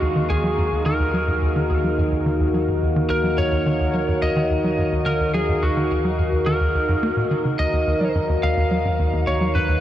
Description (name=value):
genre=ambient, sequencer-driven space music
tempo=107 BPM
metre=4/4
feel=straight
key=Eb minor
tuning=A4 = 439 Hz
part: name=lightly driven lead guitar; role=melody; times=0.0-9.8 s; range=Gb4 to F5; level=-24 LUFS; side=equal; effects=ping-pong delay
part: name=sweeping resonant pad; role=sustained chords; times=0.0-9.8 s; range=Eb3 to F5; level=-24 LUFS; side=equal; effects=chorus
part: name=tight sequencer bass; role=riff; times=0.0-9.8 s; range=Eb2 to Bb3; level=-23 LUFS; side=equal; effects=ping-pong delay
part: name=analog drone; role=bass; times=0.0-9.8 s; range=Eb2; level=-26 LUFS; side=equal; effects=chorus, transformer saturation
room=wet huge ambient reverb, RT60 7.2 s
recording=worn, warbling old tape, cassette tape, warbly pitch drift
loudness=-18 LUFS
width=side -12 dB against mid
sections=0.0-9.8 A section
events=none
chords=0.0 Ebmadd9